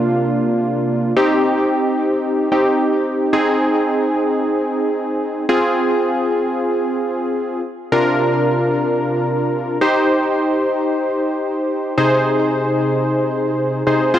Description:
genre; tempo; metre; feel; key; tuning
pop; free time; none; none; unclear; A4 = 440 Hz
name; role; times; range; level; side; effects
warm analog keys; solo; 0.0-14.2 s; C3 to C5; -15 LUFS; equal; chorus, tape echo
room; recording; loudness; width
moderate lush hall reverb, RT60 2.0 s; none; -15 LUFS; side -11 dB against mid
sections
0.0-14.2 A section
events
none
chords
0.0 Bb/C; 1.2 Cm; 3.3 Ab/C; 5.5 Fm/C; 7.9 Bb/C; 9.8 Cm; 12.0 Ab/C

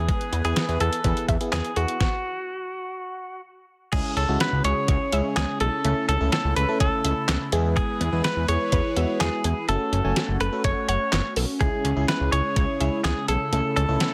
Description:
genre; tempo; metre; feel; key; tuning
synth-pop; 125 BPM; 4/4; straight; unclear; A4 = 440 Hz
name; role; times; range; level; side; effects
direct-recorded clean electric guitar; melody; 0.0-14.1 s; F#4 to C#5; -30 LUFS; equal; tape echo
FM electric piano; accompaniment; 0.0-14.1 s; G#3 to G#5; -32 LUFS; equal; chorus
phased analog pad; sustained chords; 0.1-14.1 s; C#3 to G#5; -35 LUFS; equal; phaser, chorus
resonant blip pluck; arpeggios; 0.0-14.1 s; G#3 to F#5; -36 LUFS; equal; phaser, tape echo
fat analog bass; bass; 0.0-14.0 s; F#1 to E2; -27 LUFS; equal; none
detuned 8-bit digital drum machine; drums; 0.1-14.1 s; crash cymbal, handclaps, hi-hat, kick drum, snare drum; -28 LUFS; equal; none
room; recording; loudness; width
light reverb, digital ambience; dense, heavily limited modern master; -24 LUFS; mono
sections
0.0-3.9 A section; 3.9-14.1 B section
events
stop 2.0-3.9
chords
0.0 E; 2.0 N.C.; 3.9 C#m; 5.8 A/C#; 7.5 E; 9.7 F#m; 11.6 C#m; 13.5 A/C#

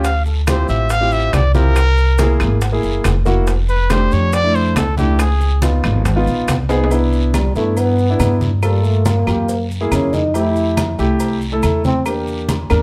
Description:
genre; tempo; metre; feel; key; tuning
Afro-Cuban jazz; 140 BPM; 4/4; straight; C major; A4 = 439 Hz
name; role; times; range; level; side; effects
warm trumpet; melody; 0.0-5.6 s; G4 to F5; -22 LUFS; equal; none
dark grand piano; accompaniment; 0.0-12.8 s; A3 to Bb4; -22 LUFS; equal; none
upright bass; bass; 0.0-12.8 s; F1 to G2; -19 LUFS; equal; none
bongos and cowbell; percussion; 0.0-12.8 s; none; -32 LUFS; equal; none
congas; percussion; 0.0-12.8 s; none; -26 LUFS; equal; none
maracas; percussion; 0.0-12.8 s; none; -38 LUFS; equal; none
timbales and agogo bells; percussion; 0.0-12.8 s; none; -29 LUFS; equal; none
guiro; percussion; 0.1-12.8 s; none; -37 LUFS; equal; none
claves; percussion; 0.5-12.8 s; none; -34 LUFS; equal; none
breathy trombone; second line; 7.4-12.0 s; G3 to E4; -22 LUFS; equal; none
room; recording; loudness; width
light reverb; close, detailed microphones; -16 LUFS; mono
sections
0.0-6.9 A section; 6.9-12.8 A section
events
trumpet solo 0.0-6.9; drum fill 6.7; trombone solo 6.9-12.8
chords
0.0 Dm11; 1.8 Caug7; 3.5 F6; 5.2 Db9; 6.9 Cmaj9; 8.6 Gm7; 9.5 F#9; 10.3 Fmaj9; 12.1 Em7b5

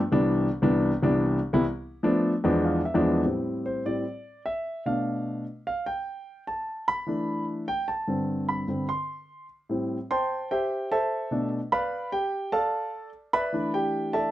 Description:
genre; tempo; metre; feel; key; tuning
jazz; 149 BPM; 4/4; straight; A minor; A4 = 440 Hz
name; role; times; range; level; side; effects
warm concert grand piano; solo; 0.1-14.3 s; C2 to C6; -24 LUFS; equal; none
room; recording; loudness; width
light reverb; dry, close 1970s-style studio recording; -25 LUFS; side -14 dB against mid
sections
0.0-3.2 A section; 3.2-14.3 B section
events
grand piano fill 2.4-3.2; grand piano solo 3.2-14.3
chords
0.0 Cmaj9; 1.6 Bm7b5; 2.4 E7b9; 3.2 Am7; 4.9 Bm7b5; 6.5 E7sus4; 8.1 Gsus4; 9.7 Am7; 11.3 Bm7b5; 12.9 E7sus4

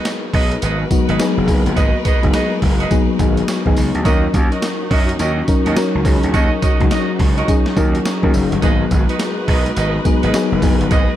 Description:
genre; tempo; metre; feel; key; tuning
R&B, new jack swing; 105 BPM; 4/4; swing 63% on 16ths; G# minor; A4 = 441 Hz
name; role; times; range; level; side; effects
mellow FM electric piano; accompaniment; 0.0-11.2 s; F#3 to A#4; -19 LUFS; left 3 dB; chorus
warm studio string section; sustained chords; 0.0-11.2 s; G#3 to B4; -25 LUFS; equal; none
warm horn section; stabs; 0.0-11.1 s; F#4 to D#5; -24 LUFS; right 3 dB; ping-pong delay
boom bap sampler-style drum kit; drums; 0.1-11.1 s; hi-hat, kick drum, snare drum, tambourine; -17 LUFS; right 1 dB; none
gritty slap bass; bass; 0.3-11.0 s; F#1 to F#2; -20 LUFS; right 1 dB; overdrive
room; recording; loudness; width
little or no reverb; none; -14 LUFS; side -12 dB against mid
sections
0.0-11.2 A section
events
none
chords
0.0 G#m7; 4.1 D#m7; 8.6 G#m7

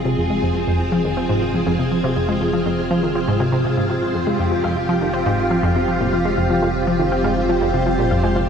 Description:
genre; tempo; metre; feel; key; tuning
ambient, sequencer-driven space music; 121 BPM; 4/4; straight; F minor; A4 = 440 Hz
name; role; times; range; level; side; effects
string machine, full ensemble; sustained chords; 0.0-8.5 s; C4 to Ab4; -20 LUFS; equal; ensemble chorus, shimmer reverb
soft round pluck; arpeggios; 0.0-8.5 s; C4 to F5; -29 LUFS; moving between left 6 dB and right 2 dB; none
analog pluck; riff; 0.0-8.4 s; F2 to C4; -20 LUFS; equal; chorus, tape echo
warm sub bass; bass; 0.0-8.5 s; F1; -31 LUFS; equal; tube saturation
room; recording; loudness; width
wet cathedral reverb, RT60 5.3 s; in a vast, echoing space; -17 LUFS; side -7 dB against mid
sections
0.0-8.5 A section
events
fade-in on sub bass 0.0-8.5; filter sweep on synth arpeggio sound 0.0-8.5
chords
0.0 Fmadd9

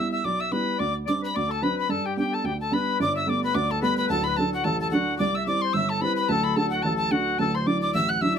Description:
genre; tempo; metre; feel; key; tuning
celtic folk, Celtic reel; 219 BPM; 4/4; swing 56% on 8ths; G major; A4 = 440 Hz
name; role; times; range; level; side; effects
tin whistle; melody; 0.0-8.4 s; F#5 to F#6; -27 LUFS; left 1 dB; none
accordion; second line; 0.0-8.4 s; F#4 to F#5; -29 LUFS; left 10 dB; none
dark upright piano; accompaniment; 0.0-8.4 s; D1 to F#4; -26 LUFS; right 3 dB; none
room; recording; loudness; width
light reverb; close, detailed microphones; -22 LUFS; side -8 dB against mid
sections
0.0-3.0 A section; 3.0-8.4 A section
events
none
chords
0.0 Em; 0.8 D7sus4; 1.3 D7; 1.9 G; 3.0 Gadd9; 4.1 D; 5.2 C; 6.3 D; 7.4 Dadd9

